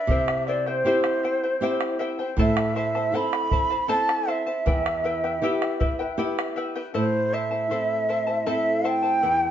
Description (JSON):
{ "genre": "andean folk, Andean ensemble", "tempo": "79 BPM", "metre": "3/4", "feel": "straight", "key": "unclear", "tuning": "A4 = 438 Hz", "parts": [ { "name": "large quena", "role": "melody", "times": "0.0-9.5 s", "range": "C5 to B5", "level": "-24 LUFS", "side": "right 1 dB", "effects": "none" }, { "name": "charango", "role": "accompaniment", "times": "0.0-9.5 s", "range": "E4 to A5", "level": "-29 LUFS", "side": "left 3 dB", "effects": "none" }, { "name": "flamenco guitar", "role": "accompaniment", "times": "0.1-9.5 s", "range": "E2 to A4", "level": "-28 LUFS", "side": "right 2 dB", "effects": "none" }, { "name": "bombo", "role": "percussion", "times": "0.1-6.9 s", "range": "none", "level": "-27 LUFS", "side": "equal", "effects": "none" } ], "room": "wet stone room reverb, RT60 1.0 s", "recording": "band playing live in one room, nothing above 7.9 kHz", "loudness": "-22 LUFS", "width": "side -10 dB against mid", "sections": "0.0-7.0 A section; 7.0-9.5 B section", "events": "none", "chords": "0.1 C; 2.4 Am; 4.7 Em; 7.0 Am", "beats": "| 0.09 0.85 1.61 | 2.38 3.14 3.90 | 4.67 5.43 6.19 | 6.95 7.71 8.48 | 9.24" }